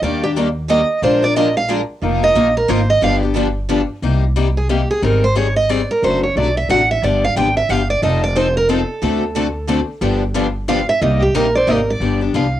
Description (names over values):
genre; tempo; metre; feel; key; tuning
acoustic string swing (jazz manouche); 180 BPM; 3/4; swing 61% on 8ths; C minor; A4 = 439 Hz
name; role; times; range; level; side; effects
picked steel-string acoustic guitar; melody; 0.0-12.6 s; G4 to G5; -17 LUFS; right 2 dB; cassette tape
picked steel-string acoustic guitar; accompaniment; 0.0-12.5 s; C3 to Bb4; -20 LUFS; left 6 dB; cassette tape
picked steel-string acoustic guitar; accompaniment; 0.0-3.8, 8.0-11.8 s; C3 to Bb4; -24 LUFS; right 8 dB; cassette tape
upright bass; bass; 0.0-12.6 s; F1 to Eb2; -20 LUFS; equal; none
room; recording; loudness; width
moderate small room reverb, RT60 0.5 s; home recording on cassette; -14 LUFS; side -12 dB against mid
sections
0.0-4.0 A section; 4.0-12.0 A section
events
steel-string acoustic guitar solo 0.0-4.0, 4.0-12.0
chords
0.0 Ebmaj7; 1.0 Bb7; 2.0 F7sus4; 3.0 G7; 4.0 Cm7; 5.0 Abmaj7; 6.0 D7/F#; 7.0 G7; 8.0 F7; 9.0 D7; 10.0 G7; 11.0 Cm7; 12.0 G7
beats
| 0.03 0.36 0.69 | 1.02 1.36 1.69 | 2.02 2.36 2.69 | 3.02 3.36 3.69 | 4.02 4.36 4.69 | 5.02 5.36 5.69 | 6.03 6.36 6.69 | 7.02 7.36 7.69 | 8.02 8.36 8.69 | 9.02 9.35 9.68 | 10.02 10.35 10.68 | 11.01 11.34 11.68 | 12.01 12.34